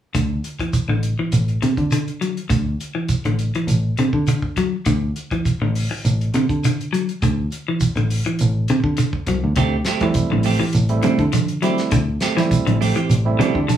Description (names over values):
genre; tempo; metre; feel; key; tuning
afrobeat; 102 BPM; 4/4; straight; D mixolydian; A4 = 440 Hz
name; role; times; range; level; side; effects
clean electric guitar; arpeggios; 0.1-13.8 s; D3 to F#3; -23 LUFS; left 3 dB; none
damped 70s drum kit; drums; 0.1-13.8 s; hi-hat, kick drum, snare drum; -27 LUFS; equal; none
fingered electric bass; bass; 0.2-13.8 s; A1 to D3; -20 LUFS; right 1 dB; none
shekere; percussion; 0.2-13.8 s; none; -22 LUFS; right 3 dB; none
clean electric guitar; stabs; 9.6-13.6 s; A3 to G4; -23 LUFS; right 6 dB; none
congas; percussion; 9.6-13.8 s; none; -26 LUFS; right 4 dB; none
barky tine electric piano; accompaniment; 10.0-13.8 s; G3 to A5; -23 LUFS; right 4 dB; overdrive
room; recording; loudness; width
moderate studio ambience, RT60 0.5 s; band playing live in one room, studio reverb; -17 LUFS; side -10 dB against mid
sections
0.1-13.8 A section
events
tine electric piano fill 13.1-13.8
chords
0.1 D7sus4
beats
| 0.15 0.74 1.33 1.92 | 2.51 3.10 3.69 4.28 | 4.87 5.46 6.04 6.63 | 7.22 7.81 8.40 8.99 | 9.58 10.17 10.76 11.34 | 11.93 12.52 13.11 13.69